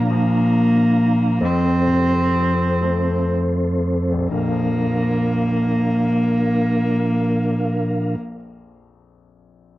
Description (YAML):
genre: pop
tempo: 38-47 BPM (dotted quarters)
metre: 6/8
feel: straight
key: Bb major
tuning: A4 = 440 Hz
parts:
  - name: warm cello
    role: melody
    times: 0.0-8.2 s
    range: Bb3 to C4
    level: -20 LUFS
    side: equal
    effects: none
  - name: clear concert grand piano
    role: accompaniment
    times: 0.0-9.8 s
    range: Bb1 to A3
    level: -29 LUFS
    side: left 6 dB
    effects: cassette tape
  - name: mellow tonewheel organ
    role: sustained chords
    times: 0.0-8.2 s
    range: F2 to Bb5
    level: -20 LUFS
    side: equal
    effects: chorus vibrato, fast rotary speaker, cassette tape
room: moderate spring reverb, RT60 1.8 s, small room ambience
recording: home recording on cassette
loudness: -16 LUFS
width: side -16 dB against mid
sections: 0.0-4.3 A section; 4.3-7.5 B section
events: slowing down 0.0-4.3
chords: 0.0 Bb; 1.4 F; 4.3 Bb